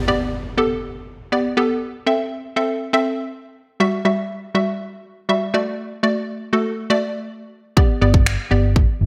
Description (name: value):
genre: dance-pop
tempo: 121 BPM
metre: 4/4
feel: straight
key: G major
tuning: A4 = 444 Hz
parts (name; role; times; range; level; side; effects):
- hollow square pluck; accompaniment; 0.0-9.1 s; G3 to E5; -22 LUFS; equal; chorus
- impact; sound effects; 0.0-1.8 s; none; -33 LUFS; equal; none
- house drum kit; drums; 7.8-8.9 s; finger snaps, kick drum; -18 LUFS; equal; none
- vintage muted fingered electric bass; bass; 8.0-9.1 s; G1; -20 LUFS; equal; sidechain pumping
room: light reverb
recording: bright 1980s-style digital production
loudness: -20 LUFS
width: mono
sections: 0.0-9.1 A section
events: impact 0.0-1.8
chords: 0.0 G; 1.8 Am; 3.8 Emadd9; 5.5 D; 7.8 G